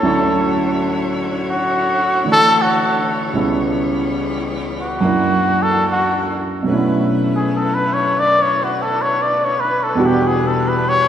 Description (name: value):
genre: jazz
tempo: 72 BPM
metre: 4/4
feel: swing 69% on 8ths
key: unclear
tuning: A4 = 444 Hz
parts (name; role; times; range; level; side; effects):
- trumpet with cup mute; melody; 0.0-11.1 s; F#4 to D5; -17 LUFS; left 1 dB; none
- warm upright piano; accompaniment; 0.0-11.1 s; C#2 to F#4; -18 LUFS; right 1 dB; none
- bright saxophone section; sustained chords; 0.0-11.1 s; D3 to C#5; -26 LUFS; left 2 dB; none
room: wet church reverb, RT60 3.5 s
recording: recorded in a church or concert hall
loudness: -15 LUFS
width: side -9 dB against mid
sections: 0.0-11.1 A section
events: muted trumpet solo 0.0-11.1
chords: 0.0 Dmaj9; 3.3 C#m7b5; 5.0 F#7b13; 6.7 Bm11; 10.0 Em7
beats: | 0.03 0.86 1.69 2.51 | 3.34 4.17 5.00 5.83 | 6.67 7.50 8.32 9.15 | 9.98 10.80